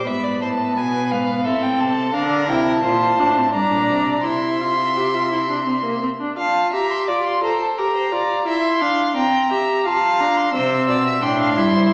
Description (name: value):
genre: classical, baroque-style fugue for string quartet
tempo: 87 BPM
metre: 3/4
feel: straight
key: unclear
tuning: A4 = 440 Hz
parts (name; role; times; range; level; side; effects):
- rich violin; melody; 0.0-11.9 s; E5 to E6; -21 LUFS; equal; none
- clear violin; second line; 0.0-11.9 s; A4 to G5; -23 LUFS; equal; none
- rich viola; accompaniment; 0.0-11.9 s; Bb3 to A4; -20 LUFS; equal; none
- rich cello; bass; 0.0-6.0, 10.5-11.9 s; G2 to D3; -24 LUFS; equal; none
room: wet recital hall reverb, RT60 1.4 s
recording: heard from further back in the room, small speaker sound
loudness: -16 LUFS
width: side -38 dB against mid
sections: 0.0-6.4 A section; 6.4-11.9 B section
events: none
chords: 0.1 E/G# (rootless); 1.5 Am; 2.1 Bb; 3.5 Gm; 4.2 C; 6.4 F; 7.8 Gm7; 8.5 C7; 9.8 F; 10.5 C